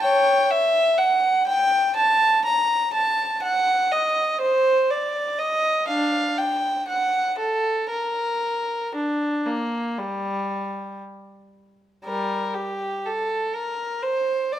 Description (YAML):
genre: classical, baroque-style suite movement for unaccompanied violin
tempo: 57-63 BPM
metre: 4/4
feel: rubato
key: G minor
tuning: A4 = 442 Hz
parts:
  - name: warm violin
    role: solo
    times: 0.0-14.6 s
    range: G3 to Bb5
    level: -20 LUFS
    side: equal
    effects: none
room: moderate stone room reverb, RT60 1.3 s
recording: none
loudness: -20 LUFS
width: side -11 dB against mid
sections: 0.0-12.0 A section; 12.0-14.6 B section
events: none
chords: none